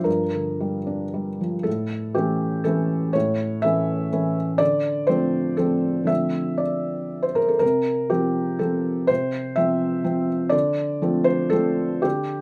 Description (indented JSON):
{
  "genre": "neoclassical minimalist piano",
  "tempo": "110-127 BPM",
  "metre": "3/4",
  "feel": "rubato",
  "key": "D minor",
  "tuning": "A4 = 439 Hz",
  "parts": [
    { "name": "felt-muted upright piano", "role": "solo", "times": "0.0-12.4 s", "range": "G2 to E5", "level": "-23 LUFS", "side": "equal", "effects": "none" }
  ],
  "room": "moderate studio reverb, RT60 0.6 s",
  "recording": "none",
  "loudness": "-23 LUFS",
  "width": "mono",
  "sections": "0.0-1.7 A section; 1.7-12.4 B section",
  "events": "none",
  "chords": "0.0 Gm7; 1.7 A; 4.6 Dm7; 7.6 C7sus4; 10.5 Dm7"
}